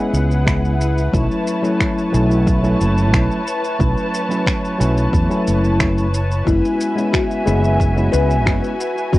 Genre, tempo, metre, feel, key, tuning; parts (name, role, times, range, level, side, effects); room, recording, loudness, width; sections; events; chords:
sunset chillout; 90 BPM; 4/4; straight; A4 = 440 Hz
tine electric piano; accompaniment; 0.0-9.2 s; F#3 to E4; -20 LUFS; equal; auto-pan, cassette tape, tape echo
muted studio string section; sustained chords; 0.0-9.2 s; E4 to A5; -23 LUFS; left 1 dB; cassette tape
fretless electric bass; bass; 0.1-9.2 s; F#1 to E2; -17 LUFS; equal; analog chorus
electronic shaker and finger snaps; drums; 0.1-9.2 s; -25 LUFS; equal; overdrive, cassette tape
electronic kick drum; drums; 0.5-9.2 s; -20 LUFS; equal; overdrive, cassette tape
buzzing kalimba; arpeggios; 6.5-9.2 s; E4 to B4; -22 LUFS; left 5 dB; cassette tape, tape echo, plate reverb
moderate small room ambience, RT60 0.5 s; home recording on cassette; -15 LUFS; side -17 dB against mid
0.0-9.2 A section
0.0 F#9sus4; 1.1 B9sus4; 6.5 F#9sus4